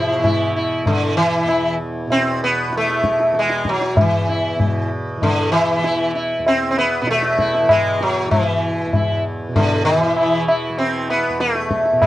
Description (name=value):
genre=indian classical, Hindustani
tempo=97 BPM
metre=7/4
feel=straight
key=unclear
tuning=A4 = 438 Hz
part: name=sitar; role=melody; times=0.0-12.1 s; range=D3 to E4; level=-18 LUFS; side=equal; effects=none
part: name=tanpura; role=drone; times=0.0-12.1 s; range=E2 to E3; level=-25 LUFS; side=right 1 dB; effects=none
part: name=tabla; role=percussion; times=0.2-12.1 s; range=none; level=-20 LUFS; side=left 1 dB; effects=none
room=moderate small room reverb, RT60 0.5 s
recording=worn, warbling old tape, cassette tape, warbly pitch drift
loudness=-16 LUFS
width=side -15 dB against mid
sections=0.0-12.1 A section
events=none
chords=none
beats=0.23 0.85 1.48 2.10 2.73 3.35 | 3.97 4.60 5.22 5.84 6.46 7.08 7.70 | 8.32 8.94 9.55 10.17 10.78 11.40 12.01